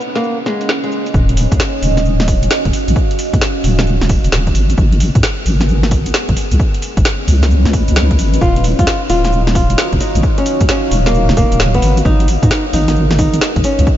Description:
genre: UK garage, two-step garage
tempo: 132 BPM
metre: 4/4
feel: swing 65% on 16ths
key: Eb minor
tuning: A4 = 439 Hz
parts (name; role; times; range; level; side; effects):
- garage drum kit; drums; 0.0-14.0 s; hi-hat, shaker, snare drum; -19 LUFS; equal; overdrive, low-pass filter on perc, low-pass filter on snare, low-pass filter on hats
- deep dark ambient pad; texture; 0.0-14.0 s; Cb4 to Gb5; -21 LUFS; right 1 dB; chorus, built-in reverb, sidechain pumping
- flamenco guitar; melody; 0.2-1.1, 8.4-13.9 s; Ab3 to F4; -19 LUFS; equal; ping-pong delay
- deep soft wobble bass; bass; 1.1-13.9 s; Eb1 to Ab2; -13 LUFS; equal; chorus, sidechain pumping
- electronic kick drum; drums; 1.1-14.0 s; none; -16 LUFS; equal; none
room: light reverb, digital ambience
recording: nothing above 7.6 kHz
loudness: -11 LUFS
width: side -12 dB against mid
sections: 0.0-1.1 A section; 1.1-14.0 B section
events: drop 1.1-14.0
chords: 0.0 Dbm9; 1.1 Ebm9; 4.6 Abm9; 6.4 Dbm9; 8.4 Ebm9; 11.8 Abm9

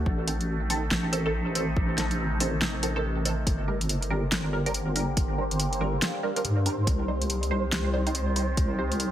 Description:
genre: deep dubstep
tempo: 141 BPM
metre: 4/4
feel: swing 62% on 16ths, half-time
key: G minor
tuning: A4 = 444 Hz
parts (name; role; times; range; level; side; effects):
- overtone-sweeping drone; sustained chords; 0.0-9.1 s; C3 to G4; -34 LUFS; left 1 dB; chorus, built-in reverb
- deep soft wobble bass; bass; 0.0-9.1 s; G1 to G2; -28 LUFS; equal; chorus
- electronic kick drum; drums; 0.1-8.7 s; none; -27 LUFS; equal; none
- filtered dub chord stab; stabs; 0.3-8.9 s; Eb3 to C5; -32 LUFS; right 2 dB; phaser, ensemble chorus, dub echo
- deep house drum kit; drums; 0.3-9.1 s; hi-hat, snare drum; -29 LUFS; equal; none
- flickering grainy texture; texture; 3.9-9.1 s; C5; -37 LUFS; right 4 dB; built-in reverb
room: light reverb, digital ambience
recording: none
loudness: -24 LUFS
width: side -11 dB against mid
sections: 0.0-3.5 A section; 3.5-9.1 A section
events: drop 0.0-3.5, 3.5-9.1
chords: 0.1 Adim; 3.5 Gm; 6.9 Cm

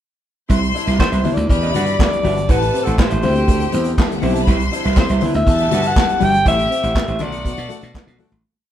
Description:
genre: disco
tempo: 121 BPM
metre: 4/4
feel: straight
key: E minor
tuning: A4 = 439 Hz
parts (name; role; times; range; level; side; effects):
- clear studio string section; second line; 0.5-8.2 s; D4 to C6; -26 LUFS; left 4 dB; none
- clean electric guitar; accompaniment; 0.5-8.4 s; D4 to F#5; -28 LUFS; right 7 dB; warbly pitch drift
- warm concert grand piano; accompaniment; 0.5-8.3 s; A2 to G4; -24 LUFS; left 4 dB; none
- warm French horn section; sustained chords; 0.5-8.4 s; B2 to G4; -30 LUFS; right 2 dB; none
- slap bass; bass; 0.5-8.4 s; G1 to B2; -20 LUFS; right 1 dB; none
- vintage drum kit; drums; 0.5-8.4 s; handclaps, hi-hat, kick drum, snare drum; -19 LUFS; equal; none
- breathy alto saxophone; melody; 1.0-8.2 s; A4 to G5; -20 LUFS; left 1 dB; none
- congas; percussion; 1.0-8.3 s; none; -26 LUFS; left 4 dB; none
room: moderate studio reverb, RT60 0.8 s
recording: band playing live in one room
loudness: -14 LUFS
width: side -11 dB against mid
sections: 0.5-8.4 pre-chorus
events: fade-out 6.5-8.4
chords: 0.5 Cmaj7; 1.5 Em7; 2.5 Am7; 3.2 D9sus4; 4.5 Cmaj7; 5.5 Em7; 6.5 Am7; 7.2 Bm7

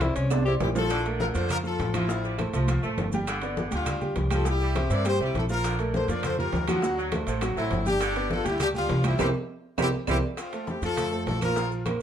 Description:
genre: latin, salsa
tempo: 203 BPM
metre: 4/4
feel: straight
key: F major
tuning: A4 = 442 Hz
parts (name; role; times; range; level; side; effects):
- warm tenor saxophone; melody; 0.0-0.5 s; Db4 to G4; -29 LUFS; left 2 dB; plate reverb
- bright upright piano; accompaniment; 0.0-12.0 s; F3 to G5; -30 LUFS; right 2 dB; none
- upright bass; bass; 0.0-12.0 s; G1 to G2; -29 LUFS; equal; none
- bongos; percussion; 0.0-12.0 s; none; -38 LUFS; left 5 dB; none
- claves; percussion; 0.0-12.0 s; none; -43 LUFS; right 5 dB; none
- congas; percussion; 0.0-12.0 s; none; -34 LUFS; left 1 dB; none
- maracas; percussion; 0.0-12.0 s; none; -46 LUFS; right 7 dB; none
- timbales; percussion; 0.0-12.0 s; none; -36 LUFS; right 6 dB; none
- brilliant horn section; melody; 0.5-11.7 s; C4 to D5; -30 LUFS; left 3 dB; plate reverb
- edgy saxophone section; second line; 0.9-10.2 s; C3 to A3; -35 LUFS; right 2 dB; none
room: moderate studio reverb, RT60 0.5 s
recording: dark, warm production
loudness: -24 LUFS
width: side -9 dB against mid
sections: 0.9-10.4 A section; 10.4-12.0 B section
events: drum fill 0.3-0.9, 9.5-10.4; band accent 9.2-10.4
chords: 0.0 Cadd9; 0.9 Bbmaj7; 2.1 Fmaj7/A; 3.3 G7; 4.5 C; 5.6 Bbmaj7; 6.8 D7; 8.0 G7; 9.2 C7; 10.4 F

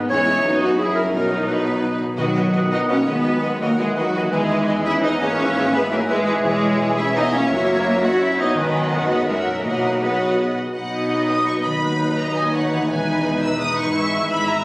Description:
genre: classical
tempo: 169 BPM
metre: 3/4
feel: straight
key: B major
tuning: A4 = 439 Hz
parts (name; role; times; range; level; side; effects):
- rich studio violin section; second line; 0.0-14.6 s; B3 to F#5; -27 LUFS; equal; none
- rich symphonic viola section; accompaniment; 0.0-14.6 s; F#3 to E5; -27 LUFS; equal; none
- warm French horn section; sustained chords; 0.0-14.6 s; B2 to E4; -26 LUFS; equal; none
- concert harp; arpeggios; 0.0-14.6 s; E2 to D#5; -28 LUFS; left 1 dB; none
- clear symphonic cello section; bass; 0.0-14.6 s; D#2 to F#4; -23 LUFS; equal; none
- rich symphonic double bass section; bass; 0.0-14.6 s; E1 to E2; -32 LUFS; equal; none
- bright symphonic violin section; melody; 0.1-14.6 s; D#4 to E6; -28 LUFS; equal; none
- mellow clarinet; second line; 0.1-10.6 s; F#4 to C#5; -26 LUFS; equal; none
- clear oboe; second line; 2.2-10.6 s; D#5 to E5; -30 LUFS; equal; none
- concert flute; second line; 2.2-10.6 s; F#5 to G#5; -31 LUFS; equal; none
- mellow bassoon; accompaniment; 2.2-10.6 s; D#3 to F#3; -27 LUFS; equal; none
- timpani; percussion; 2.2-2.7, 7.5-10.2 s; F#2 to B2; -35 LUFS; equal; none
room: moderate recital hall reverb, RT60 1.6 s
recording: recorded on a phone in the room, studio reverb, compression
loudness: -17 LUFS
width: side -23 dB against mid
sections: 0.0-2.2 A section; 2.2-10.8 B section; 10.8-14.6 B section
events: none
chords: 0.1 C#m/E; 0.4 B/F#; 0.8 F#7; 1.1 B; 3.3 B/D#; 4.3 Emaj7; 5.4 E/G#; 6.4 C#m/E; 7.5 F#7; 8.6 G#m7; 8.9 B/F#; 9.3 F#7; 9.6 B; 11.8 B/D#; 12.9 Emaj7; 13.9 E/G#

